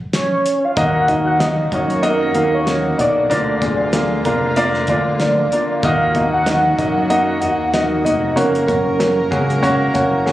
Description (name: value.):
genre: piano-driven pop.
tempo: 95 BPM.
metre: 4/4.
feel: swing 56% on 16ths.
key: Eb minor.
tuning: A4 = 440 Hz.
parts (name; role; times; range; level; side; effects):
warm velvety synth lead; melody; 0.1-10.3 s; Bb4 to Gb5; -19 LUFS; right 1 dB; chorus, tremolo.
damped 70s drum kit; drums; 0.1-10.3 s; hi-hat, kick drum, snare drum; -25 LUFS; equal; none.
warm grand piano; accompaniment; 0.8-10.3 s; D3 to Gb5; -17 LUFS; equal; none.
warm studio string section; sustained chords; 0.8-10.3 s; D3 to Bb4; -28 LUFS; equal; none.
fat analog bass; bass; 0.8-10.3 s; F1 to Gb2; -22 LUFS; right 1 dB; none.
room: moderate plate reverb, RT60 1.8 s.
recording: recorded on a phone in the room, club reverb, compression.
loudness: -14 LUFS.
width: side -14 dB against mid.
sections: 0.0-10.3 A section.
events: none.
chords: 0.0 N.C.; 0.8 Ebm; 3.3 Bb; 5.8 Ebm; 8.4 Gb.